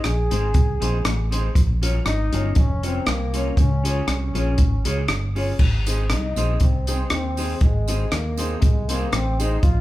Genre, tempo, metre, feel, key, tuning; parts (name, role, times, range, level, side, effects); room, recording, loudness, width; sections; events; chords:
ska; 119 BPM; 4/4; swing 54% on 8ths; Ab major; A4 = 439 Hz
warm trombone; melody; 0.0-9.8 s; Ab3 to Ab4; -28 LUFS; left 1 dB; slapback echo
semi-hollow electric guitar; riff; 0.0-9.8 s; F2 to Eb3; -33 LUFS; left 5 dB; spring reverb, slapback echo
dark upright piano; stabs; 0.0-9.6 s; C4 to Db5; -32 LUFS; left 2 dB
fingered electric bass; bass; 0.0-9.8 s; F1 to Eb2; -23 LUFS; equal; tube saturation
compact cocktail drum kit; drums; 0.0-9.8 s; crash cymbal, hi-hat, kick drum, rim click; -21 LUFS; equal
mellow electric guitar; accompaniment; 0.3-9.6 s; C4 to Db5; -32 LUFS; right 2 dB; slapback echo
tambourine; percussion; 5.9-9.5 s; -39 LUFS; right 7 dB
light reverb; band playing live in one room; -19 LUFS; side -16 dB against mid
0.0-5.6 A section; 5.6-9.8 A section
0.0 Ab; 1.6 Bbm; 3.6 Db; 5.6 Ab